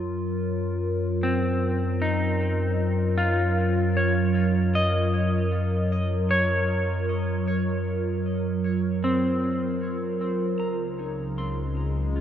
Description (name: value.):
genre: ambient.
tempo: 77 BPM.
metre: 4/4.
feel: straight.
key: unclear.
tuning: A4 = 438 Hz.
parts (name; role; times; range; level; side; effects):
warbly tape-like pad; sustained chords; 0.0-12.2 s; Db3 to Eb5; -26 LUFS; right 1 dB; chorus, built-in reverb, phaser.
round analog bass; bass; 0.0-12.2 s; Db2 to Gb2; -27 LUFS; left 1 dB; none.
clean electric guitar; arpeggios; 1.2-12.2 s; C4 to C6; -28 LUFS; left 1 dB; vibrato effect, tape echo.
overtone-sweeping drone; drone; 10.7-12.2 s; Db3 to Ab3; -36 LUFS; left 3 dB; chorus, built-in reverb, phaser.
room: wet cathedral reverb, RT60 6.1 s.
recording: in a vast, echoing space.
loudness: -22 LUFS.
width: side -9 dB against mid.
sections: 0.0-10.6 A section; 10.6-12.2 B section.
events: none.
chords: 0.0 Gbmaj7; 10.6 Fm7/Db.